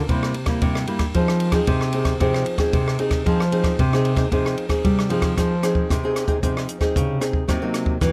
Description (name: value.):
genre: samba and choro.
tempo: 114 BPM.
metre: 4/4.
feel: straight.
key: F minor.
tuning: A4 = 439 Hz.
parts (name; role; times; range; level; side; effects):
nylon-string guitar; accompaniment; 0.0-8.1 s; G2 to Ab4; -26 LUFS; equal; none.
nylon-string guitar; bass; 0.1-8.1 s; C3 to G3; -25 LUFS; equal; none.
compact cocktail drum kit; drums; 0.1-8.1 s; hi-hat, kick drum, ride cymbal, rim click; -26 LUFS; equal; none.
room: light reverb.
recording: none.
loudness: -21 LUFS.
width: mono.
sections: 0.0-5.4 A section; 5.4-8.1 B section.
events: none.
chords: 0.1 C7; 1.1 Fm7; 7.5 Cm7b5.